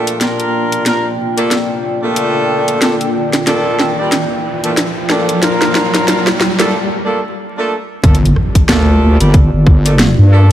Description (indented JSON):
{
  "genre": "glitch hop",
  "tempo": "92 BPM",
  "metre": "4/4",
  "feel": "swing 58% on 16ths",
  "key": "G minor",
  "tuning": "A4 = 440 Hz",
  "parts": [
    { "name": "dark analog pad", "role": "sustained chords", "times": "0.0-10.5 s", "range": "Bb3 to G5", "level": "-20 LUFS", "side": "left 1 dB", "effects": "chorus, phaser, sidechain pumping" },
    { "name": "mellow horn section", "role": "stabs", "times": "0.0-10.5 s", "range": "G3 to Bb4", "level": "-17 LUFS", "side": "equal", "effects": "sidechain pumping, dub echo" },
    { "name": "riser and impact", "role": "sound effects", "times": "0.4-10.5 s", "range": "none", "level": "-21 LUFS", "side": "equal", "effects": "none" },
    { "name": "drum and bass drum kit", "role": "drums", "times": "0.1-10.1 s", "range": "hi-hat, rim click, snare drum", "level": "-16 LUFS", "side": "equal", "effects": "overdrive, small room ambience" },
    { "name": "wobble bass", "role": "bass", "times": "8.0-10.5 s", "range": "G1 to G2", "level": "-9 LUFS", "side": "equal", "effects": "chorus, overdrive" },
    { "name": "electronic kick drum", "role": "drums", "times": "8.0-9.8 s", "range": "none", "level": "-8 LUFS", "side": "equal", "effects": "overdrive, small room ambience" }
  ],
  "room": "light reverb, digital ambience",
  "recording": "vinyl crackle",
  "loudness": "-10 LUFS",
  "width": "side -12 dB against mid",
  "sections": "0.0-8.0 A section; 8.0-10.5 B section",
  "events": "build-up 0.0-8.0; drum fill 0.0-6.7; riser 0.4-6.7; break 6.7-8.0; drop 8.0-10.5; impact 8.0-10.5",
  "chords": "0.0 Gm7",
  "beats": "| 0.21 0.86 1.51 2.17 | 2.82 3.47 4.12 4.78 | 5.43 6.08 6.73 7.38 | 8.04 8.69 9.34 9.99"
}